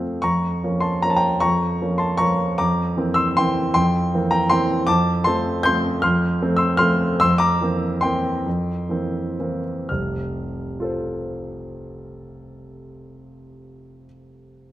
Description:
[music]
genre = classical, piano waltz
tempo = 113-167 BPM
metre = 3/4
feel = rubato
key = F major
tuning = A4 = 440 Hz
[part]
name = warm grand piano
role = solo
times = 0.0-14.7 s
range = F1 to G6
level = -19 LUFS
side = equal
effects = none
[sound]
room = moderate recital hall reverb, RT60 1.6 s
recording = none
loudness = -18 LUFS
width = side -14 dB against mid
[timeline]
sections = 0.2-9.9 A section; 9.9-12.6 B section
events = slowing down 6.6-9.9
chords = 0.2 Bbm/F; 2.6 C7/F; 4.9 F; 7.2 C7/F; 9.9 F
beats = | 0.23 0.62 1.03 | 1.43 1.82 2.21 | 2.60 2.98 3.37 | 3.76 4.13 4.51 | 4.88 5.26 5.66 | 6.04 6.42 6.82 | 7.22 7.62 8.03 | 8.45 8.89 9.38 | 9.88 10.33 10.79 | 11.24 11.68 12.13

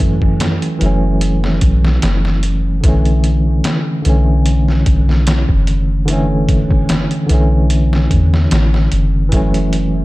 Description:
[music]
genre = trip hop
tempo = 74 BPM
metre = 4/4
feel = swing 54% on 16ths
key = B minor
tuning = A4 = 436 Hz
[part]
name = mellow tine electric piano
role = accompaniment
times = 0.0-10.0 s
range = D3 to C#4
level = -16 LUFS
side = equal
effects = overdrive, tremolo, tape echo
[part]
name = soft 808-style bass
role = bass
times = 0.0-10.0 s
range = F#1 to F#2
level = -14 LUFS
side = equal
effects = none
[part]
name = trip hop sampler-style drum kit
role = drums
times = 0.0-9.9 s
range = hi-hat, kick drum, snare drum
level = -17 LUFS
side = equal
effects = overdrive
[sound]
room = light reverb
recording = dark, warm production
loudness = -12 LUFS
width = side -19 dB against mid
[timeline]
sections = 0.0-10.0 A section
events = none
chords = 0.0 F#m7; 2.8 Bm11; 9.3 F#m7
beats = 0.41 1.22 2.03 | 2.84 3.65 4.46 5.27 | 6.08 6.89 7.70 8.51 | 9.32

